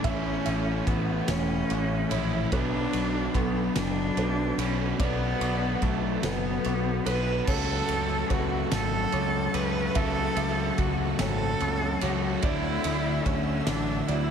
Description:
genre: post-rock.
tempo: 48 BPM (dotted quarters).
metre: 6/8.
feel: straight.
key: unclear.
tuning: A4 = 440 Hz.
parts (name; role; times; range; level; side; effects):
rich cello; melody; 0.0-14.3 s; A3 to B4; -30 LUFS; right 1 dB; slapback echo, analog delay.
rich studio string section; sustained chords; 0.0-14.3 s; A4 to E6; -42 LUFS; right 1 dB; none.
felt-muted upright piano; arpeggios; 0.0-14.3 s; A4 to E5; -38 LUFS; right 4 dB; slapback echo, analog delay.
distorted electric guitar; riff; 0.0-14.3 s; A2 to E4; -33 LUFS; right 12 dB; distortion, slapback echo.
overdriven semi-hollow guitar; riff; 0.0-14.3 s; F#2 to D4; -31 LUFS; left 10 dB; none.
growling picked electric bass; bass; 0.0-14.3 s; E1 to D2; -31 LUFS; equal; overdrive.
loose indie drum kit; drums; 0.0-14.3 s; crash cymbal, kick drum, ride cymbal, snare drum; -32 LUFS; right 1 dB; none.
room: moderate lush hall reverb, RT60 2.9 s.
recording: big arena sound.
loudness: -24 LUFS.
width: side -7 dB against mid.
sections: 0.0-14.3 A section.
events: none.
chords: 0.0 Aadd9; 2.5 Bm7; 7.5 F#m; 12.4 Dadd9.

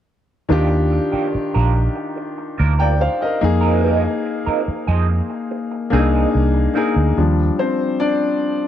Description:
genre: lush 1970s-style soul.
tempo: 72 BPM.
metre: 4/4.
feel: straight.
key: Eb major.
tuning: A4 = 440 Hz.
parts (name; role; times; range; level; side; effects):
clear concert grand piano; accompaniment; 0.5-8.7 s; Eb3 to G5; -19 LUFS; left 3 dB; none.
electric guitar through a small old amp; riff; 0.5-7.0 s; F3 to Bb4; -25 LUFS; right 10 dB; wah, spring reverb.
vintage muted fingered electric bass; bass; 0.5-7.5 s; Bb1 to F2; -17 LUFS; right 1 dB; none.
room: studio reverb.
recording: dry, close 1970s-style studio recording.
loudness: -16 LUFS.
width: side -10 dB against mid.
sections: 0.5-7.2 A section; 7.2-8.7 B section.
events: grand piano solo 7.2-8.7.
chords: 0.5 Ebmaj9; 3.4 Bb9sus4/F; 7.2 Ebmaj9.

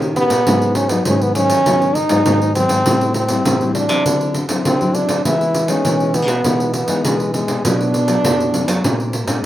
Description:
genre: samba and choro.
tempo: 100 BPM.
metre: 4/4.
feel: straight.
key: unclear.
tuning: A4 = 438 Hz.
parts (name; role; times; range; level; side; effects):
nylon-string guitar; accompaniment; 0.0-9.5 s; F#2 to G4; -22 LUFS; left 3 dB; none.
nylon-string guitar; bass; 0.0-9.4 s; G#2 to F#3; -21 LUFS; equal; none.
pandeiro; percussion; 0.0-9.4 s; none; -20 LUFS; right 1 dB; none.
clear French horn; melody; 0.2-9.1 s; G#3 to E4; -18 LUFS; equal; none.
room: light reverb.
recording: rough home demo mix.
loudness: -14 LUFS.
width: side -13 dB against mid.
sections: 0.0-9.5 A section.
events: none.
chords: 0.5 G#m7; 2.9 Am7; 4.1 D9; 5.3 Emaj7; 7.6 Bm7; 8.8 A#9.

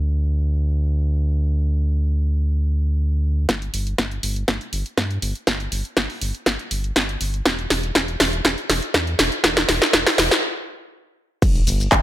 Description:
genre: progressive house.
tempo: 121 BPM.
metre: 4/4.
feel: straight.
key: unclear.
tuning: A4 = 440 Hz.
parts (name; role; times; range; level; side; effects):
round analog bass; bass; 0.0-12.0 s; E1 to G2; -21 LUFS; equal; sidechain pumping.
big-room dance drum kit; drums; 3.5-12.0 s; crash cymbal, handclaps, hi-hat, shaker, snare drum; -19 LUFS; equal; sidechain pumping on hats, sidechain pumping on cymbals, sidechain pumping on perc.
electronic kick drum; drums; 3.5-12.0 s; none; -19 LUFS; equal; high-pass filter on kick.
room: light reverb.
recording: none.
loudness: -18 LUFS.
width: side -13 dB against mid.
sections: 0.0-3.5 A section; 3.5-11.4 B section.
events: build-up 3.5-11.4; drum fill 3.5-10.4; stop 10.4-11.4.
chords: none.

